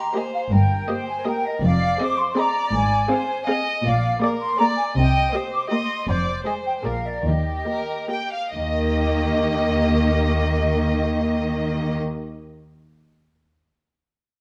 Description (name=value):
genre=cinematic, playful, whimsical film cue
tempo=134-164 BPM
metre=3/4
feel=straight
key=Eb major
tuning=A4 = 440 Hz
part: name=muted chamber violin section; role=melody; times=0.0-12.0 s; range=Bb4 to G5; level=-33 LUFS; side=equal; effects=none
part: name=mellow flute section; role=second line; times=0.0-12.0 s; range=C5 to Eb6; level=-27 LUFS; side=equal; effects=none
part: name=muted chamber violin section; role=second line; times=0.0-12.0 s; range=G4 to Eb5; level=-31 LUFS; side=equal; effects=none
part: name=muted chamber viola section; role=accompaniment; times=0.0-12.0 s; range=Ab3 to Ab4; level=-28 LUFS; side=equal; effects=none
part: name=muted chamber double bass section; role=bass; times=0.5-12.0 s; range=F1 to Eb2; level=-27 LUFS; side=equal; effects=none
part: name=muted studio cello section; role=bass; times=0.5-12.0 s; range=F2 to Eb3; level=-27 LUFS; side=equal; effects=none
room=moderate scoring stage reverb, RT60 1.4 s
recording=none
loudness=-22 LUFS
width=mono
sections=0.0-8.5 A section; 8.5-11.2 B section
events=slowing down 5.5-8.5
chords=0.0 Eb; 0.5 Eb/G; 1.6 Fm7; 2.7 Fm/Ab; 3.8 Bb7; 5.0 Cm7; 6.1 Fm7; 6.8 Bb7; 7.3 Eb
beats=0.14 | 0.52 0.89 1.26 | 1.63 2.00 2.37 | 2.74 3.10 3.47 | 3.84 4.22 4.59 | 4.96 5.33 5.70 | 6.08 6.46 6.85 | 7.25 7.67 8.10 | 8.54 8.98 9.42 | 9.86 10.31 10.75